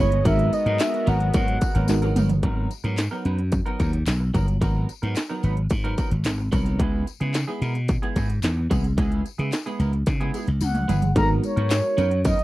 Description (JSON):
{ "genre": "early-eighties boogie funk", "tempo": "110 BPM", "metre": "4/4", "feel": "straight", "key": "G# minor", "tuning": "A4 = 439 Hz", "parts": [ { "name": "mellow horn-like synth lead", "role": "melody", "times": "0.0-2.1, 10.6-12.4 s", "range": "C#5 to A#5", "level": "-25 LUFS", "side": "right 1 dB", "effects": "chorus" }, { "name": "mellow FM electric piano", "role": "accompaniment", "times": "0.0-2.3, 11.2-12.0 s", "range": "G#3 to B4", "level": "-26 LUFS", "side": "equal", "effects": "chorus" }, { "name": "warm analog pad", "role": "sustained chords", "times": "0.0-2.4 s", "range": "C#3 to D#5", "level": "-33 LUFS", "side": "right 2 dB", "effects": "chorus" }, { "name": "clean electric guitar", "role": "riff", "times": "0.0-12.4 s", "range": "F#3 to B4", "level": "-31 LUFS", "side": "right 3 dB", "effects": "lush chorus" }, { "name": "slap bass", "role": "bass", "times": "0.0-12.3 s", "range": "G1 to C#3", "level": "-22 LUFS", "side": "equal", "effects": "none" }, { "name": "industrial drum kit", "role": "drums", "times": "0.1-12.4 s", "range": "handclaps, hi-hat, kick drum, snare drum, toms", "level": "-25 LUFS", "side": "equal", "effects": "distortion, overdrive" }, { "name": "tambourine", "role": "percussion", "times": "0.2-12.4 s", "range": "none", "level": "-42 LUFS", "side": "left 13 dB", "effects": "none" } ], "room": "little or no reverb", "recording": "dry, close 1970s-style studio recording", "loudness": "-20 LUFS", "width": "side -17 dB against mid", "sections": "0.0-2.4 A section; 2.4-11.2 B section; 11.2-12.4 A section", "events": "drum fill 1.9-2.4, 10.1-11.2", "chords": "0.3 G#m9; 6.8 C#m7; 11.2 G#m9" }